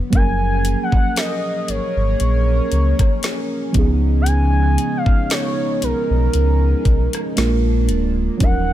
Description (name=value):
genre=contemporary R&B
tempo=58 BPM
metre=4/4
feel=swing 54% on 16ths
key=F# major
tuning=A4 = 438 Hz
part: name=muted felt-like synth keys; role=accompaniment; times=0.0-8.7 s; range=E#3 to B4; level=-24 LUFS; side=right 4 dB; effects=chorus
part: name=chorused pulse-width pad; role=sustained chords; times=0.0-8.7 s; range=C#3 to A#4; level=-26 LUFS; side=left 1 dB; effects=none
part: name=gliding portamento lead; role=melody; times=0.1-8.7 s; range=A#4 to G#5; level=-24 LUFS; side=equal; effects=chorus, ping-pong delay
part: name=sub bass with octave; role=bass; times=0.1-8.7 s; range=D1 to C#2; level=-17 LUFS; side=equal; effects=none
part: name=smooth R&B drum kit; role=drums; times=0.1-8.7 s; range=hi-hat, kick drum, rim click, snare drum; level=-19 LUFS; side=equal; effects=none
room=little or no reverb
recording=none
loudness=-15 LUFS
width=side -13 dB against mid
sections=0.0-8.7 A section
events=none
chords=0.1 F#maj7; 3.7 C#9; 7.4 A#7